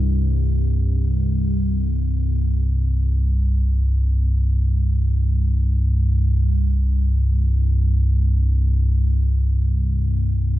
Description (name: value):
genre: ambient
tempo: free time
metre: none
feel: none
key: unclear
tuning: A4 = 440 Hz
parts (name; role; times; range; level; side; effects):
- deep rumbling drone; solo; 0.0-10.6 s; C2 to G2; -17 LUFS; equal; built-in reverb, lush chorus
room: light reverb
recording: none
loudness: -17 LUFS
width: side -15 dB against mid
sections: 0.0-3.7 A section; 3.7-10.6 B section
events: none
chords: 0.0 C5